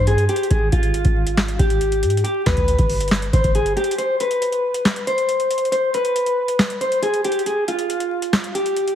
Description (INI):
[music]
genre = hip hop, trap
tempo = 138 BPM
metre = 4/4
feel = half-time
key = unclear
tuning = A4 = 440 Hz
[part]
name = electric guitar at the edge of break-up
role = melody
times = 0.0-8.9 s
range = F4 to C5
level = -20 LUFS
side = left 1 dB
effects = spring reverb
[part]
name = warm 808-style bass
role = bass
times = 0.0-3.7 s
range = G1 to Ab2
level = -20 LUFS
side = equal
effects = none
[part]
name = booming analog drum machine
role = drums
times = 0.1-8.9 s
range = handclaps, hi-hat, kick drum, snare drum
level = -21 LUFS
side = equal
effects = none
[sound]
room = moderate lush hall reverb, RT60 1.9 s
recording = heavily compressed radio sound, vinyl crackle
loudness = -17 LUFS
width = side -10 dB against mid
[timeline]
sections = 0.0-8.9 A section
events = break 4.0-8.9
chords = 0.0 N.C.; 0.5 Fmadd9/Ab; 2.2 G; 4.0 N.C.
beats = 0.07 | 0.51 0.94 1.38 1.81 | 2.25 2.68 3.11 3.55 | 3.98 4.42 4.85 5.29 | 5.72 6.16 6.59 7.03 | 7.46 7.90 8.33 8.77